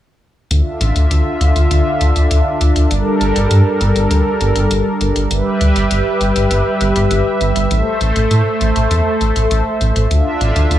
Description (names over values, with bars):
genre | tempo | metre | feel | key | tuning
synthwave | 100 BPM | 4/4 | straight | D minor | A4 = 439 Hz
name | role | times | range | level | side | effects
brassy analog pad | sustained chords | 0.5-10.8 s | D3 to E5 | -16 LUFS | equal | chorus
round analog bass | bass | 0.5-10.8 s | G1 to A2 | -14 LUFS | equal | none
electronic hi-hat | drums | 0.5-10.8 s | none | -24 LUFS | left 3 dB | small room ambience
room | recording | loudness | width
light reverb | small room ambience | -12 LUFS | side -12 dB against mid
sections
0.5-10.8 A section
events
filter sweep on analog synth bass 0.5-10.8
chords
0.5 Dmadd9; 2.9 Gmadd9; 5.3 Em/G; 7.7 Am; 10.1 Dmadd9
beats
| 0.51 1.11 1.71 2.31 | 2.91 3.51 4.11 4.71 | 5.31 5.91 6.51 7.11 | 7.71 8.31 8.91 9.51 | 10.11 10.71